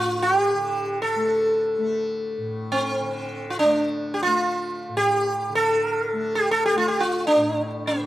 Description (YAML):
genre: indian classical, Hindustani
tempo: free time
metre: none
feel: none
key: A raga malkauns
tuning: A4 = 440 Hz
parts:
  - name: sitar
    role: melody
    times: 0.0-8.1 s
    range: A3 to A4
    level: -21 LUFS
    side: equal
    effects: slapback echo
  - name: tanpura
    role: drone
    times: 0.0-8.1 s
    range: A2 to A3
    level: -33 LUFS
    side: left 1 dB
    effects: none
room: little or no reverb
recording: recorded outdoors, with no room sound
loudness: -20 LUFS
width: side -14 dB against mid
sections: 0.0-8.1 A section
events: none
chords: none